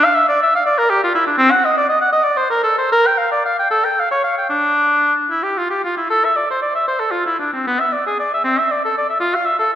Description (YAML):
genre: classical, baroque-style fantasia for unaccompanied oboe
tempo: 77 BPM (dotted quarters)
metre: 6/8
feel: uneven beats, rubato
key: D minor, A minor from 6.1 s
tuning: A4 = 440 Hz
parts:
  - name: warm oboe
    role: solo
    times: 0.0-9.7 s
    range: B3 to G5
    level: -14 LUFS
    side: equal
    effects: none
room: wet scoring stage reverb, RT60 1.9 s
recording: heard from further back in the room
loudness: -14 LUFS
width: side -11 dB against mid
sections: 0.0-6.1 A section; 6.1-9.8 A section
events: none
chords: none